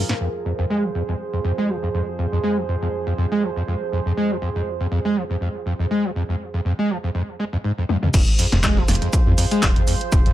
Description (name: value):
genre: acid house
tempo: 121 BPM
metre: 4/4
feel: swing 55% on 16ths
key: F minor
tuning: A4 = 439 Hz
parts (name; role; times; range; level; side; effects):
- warbly tape-like pad; sustained chords; 0.0-10.3 s; F2 to C5; -28 LUFS; right 4 dB; chorus, built-in reverb, sidechain pumping
- overdriven acid bass; riff; 0.0-10.3 s; F2 to Ab3; -22 LUFS; equal; distortion, ensemble chorus, sidechain pumping, dub echo
- punchy analog drum machine; drums; 0.1-0.2, 7.9-10.3 s; crash cymbal, handclaps, hi-hat, snare drum, toms; -24 LUFS; left 1 dB; low-pass filter on hats, studio reverb, low-pass filter on cymbals, low-pass filter on snare, low-pass filter on toms
- round analog bass; bass; 8.1-10.2 s; Eb1 to F2; -22 LUFS; equal; sidechain pumping
- dusty soul sampler-style drum kit; drums; 8.1-10.3 s; hi-hat, shaker, snare drum; -31 LUFS; left 1 dB; sidechain pumping on perc, high-pass filter on perc, studio reverb, high-pass filter on snare, sidechain pumping on hats, high-pass filter on hats
- electronic kick drum; drums; 8.1-10.2 s; none; -18 LUFS; equal; studio reverb
room: light reverb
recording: none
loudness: -19 LUFS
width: side -13 dB against mid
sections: 0.2-8.1 A section; 8.1-10.3 B section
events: break 0.0; drum fill 7.9; drop 8.1-10.3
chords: 0.2 Fm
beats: | 0.20 0.70 1.20 1.69 | 2.19 2.69 3.18 3.68 | 4.17 4.67 5.16 5.66 | 6.16 6.65 7.15 7.64 | 8.14 8.63 9.13 9.63 | 10.12